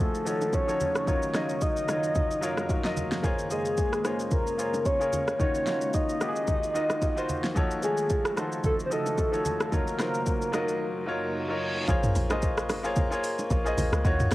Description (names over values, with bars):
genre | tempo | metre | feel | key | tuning
amapiano | 111 BPM | 4/4 | swing 55% on 16ths | Bb minor | A4 = 440 Hz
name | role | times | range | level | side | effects
soft octave-layered synth lead | melody | 0.0-11.3 s | Ab4 to Eb5 | -29 LUFS | equal | chorus, cassette tape, analog delay
clear grand piano | accompaniment | 0.0-14.3 s | Eb3 to Eb5 | -30 LUFS | left 1 dB | cassette tape
ethereal airy pad | sustained chords | 0.0-11.9 s | Gb2 to F5 | -38 LUFS | equal | ensemble chorus, built-in reverb, phaser, sidechain pumping, cassette tape
deep house drum kit | drums | 0.1-14.3 s | hi-hat, kick drum, rim click, shaker, snare drum, toms | -29 LUFS | equal | cassette tape
bongos and congas | percussion | 0.4-14.2 s | none | -36 LUFS | right 2 dB | none
reverse cymbal | sound effects | 11.2-11.9 s | none | -37 LUFS | equal | none
deep log drum bass | bass | 11.9-14.3 s | Ab1 to Eb2 | -29 LUFS | equal | none
room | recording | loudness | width
light reverb | home recording on cassette | -25 LUFS | side -17 dB against mid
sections
0.0-11.9 A section; 11.9-14.3 B section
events
reverse cymbal 11.2-11.9; drop 11.9-14.3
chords
0.0 F7b9b13; 1.1 Ebm9/Gb; 3.2 Bbm9; 5.4 Ebm9; 7.6 F7b9b13; 9.7 Ebm9/Gb; 11.9 Bbm9